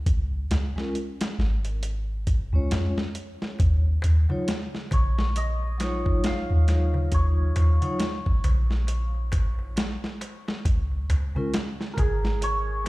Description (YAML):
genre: trip hop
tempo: 68 BPM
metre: 4/4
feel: swing 59% on 16ths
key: Eb minor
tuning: A4 = 438 Hz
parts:
  - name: soft 808-style bass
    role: bass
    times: 0.0-12.9 s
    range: Ab1 to F2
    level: -23 LUFS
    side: equal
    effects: none
  - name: dusty soul sampler-style drum kit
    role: drums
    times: 0.1-12.9 s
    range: hi-hat, kick drum, snare drum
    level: -27 LUFS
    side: equal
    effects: overdrive, small room ambience
  - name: vibraphone with soft mallets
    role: accompaniment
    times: 0.8-12.9 s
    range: Gb3 to Db5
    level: -32 LUFS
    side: equal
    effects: tremolo, tape echo
  - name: darbuka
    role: percussion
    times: 3.6-12.9 s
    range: none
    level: -36 LUFS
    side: left 1 dB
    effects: none
  - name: santur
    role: melody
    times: 4.9-12.9 s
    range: Ab4 to F5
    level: -33 LUFS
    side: equal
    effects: tape echo
room: little or no reverb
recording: played on a big sound system in a bare room, large studio reverb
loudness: -22 LUFS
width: side -20 dB against mid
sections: 0.0-12.9 A section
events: none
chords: 0.0 Bbm7 (rootless); 3.6 Ebm9; 10.7 Bbm7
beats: | 0.07 0.95 1.83 2.71 | 3.60 4.48 5.36 6.24 | 7.12 8.01 8.89 9.77 | 10.65 11.54 12.42